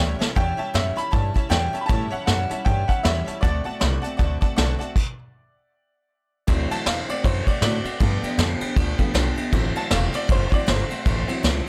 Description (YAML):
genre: rockabilly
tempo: 157 BPM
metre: 4/4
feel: swing 60% on 8ths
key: D major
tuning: A4 = 440 Hz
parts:
  - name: picked steel-string acoustic guitar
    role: accompaniment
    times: 0.0-11.7 s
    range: G2 to G4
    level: -34 LUFS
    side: equal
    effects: none
  - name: tack piano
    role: accompaniment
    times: 0.0-11.7 s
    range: E3 to B5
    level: -32 LUFS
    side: equal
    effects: none
  - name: upright bass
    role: bass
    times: 0.0-11.7 s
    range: E1 to A2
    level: -26 LUFS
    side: equal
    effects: none
  - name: vintage brush drum kit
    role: drums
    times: 0.2-11.5 s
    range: crash cymbal, hi-hat, kick drum, ride cymbal, snare drum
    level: -25 LUFS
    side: equal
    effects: none
  - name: bright upright piano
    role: melody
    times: 0.4-4.0 s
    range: D5 to B5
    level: -30 LUFS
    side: equal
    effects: tape echo
room: little or no reverb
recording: none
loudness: -22 LUFS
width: mono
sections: 0.0-6.5 A section; 6.5-11.7 B section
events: drum fill 0.0-0.4; stop 5.0-6.5; honky-tonk piano solo 6.5-11.7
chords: 0.0 A7; 3.4 D7; 5.0 N.C.; 6.5 D7; 8.0 G7; 9.5 D7